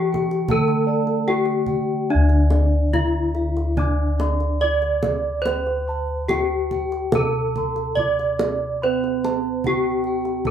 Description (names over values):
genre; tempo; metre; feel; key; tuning
Javanese gamelan; 71 BPM; 4/4; straight; D slendro; A4 = 440 Hz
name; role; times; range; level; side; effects
gamelan-type bronze metallophone; melody; 0.0-10.5 s; D4 to D5; -22 LUFS; left 1 dB; none
gamelan-type bronze metallophone; accompaniment; 0.0-2.1, 8.8-10.5 s; E3+30c to C4-45c; -25 LUFS; right 6 dB; none
gamelan-type bossed gongs; arpeggios; 0.0-10.5 s; D5 to D6; -33 LUFS; left 2 dB; none
gamelan-type bronze metallophone; arpeggios; 0.0-10.5 s; D5 to D6; -31 LUFS; right 4 dB; none
kendang; percussion; 0.1-10.5 s; none; -27 LUFS; right 2 dB; none
gamelan-type bossed gongs; bass; 0.5-10.5 s; D2 to C5-45c; -23 LUFS; left 1 dB; none
room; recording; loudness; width
moderate studio reverb, RT60 0.5 s; band playing live in one room; -19 LUFS; side -9 dB against mid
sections
0.0-2.1 A section; 2.1-10.5 B section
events
none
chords
none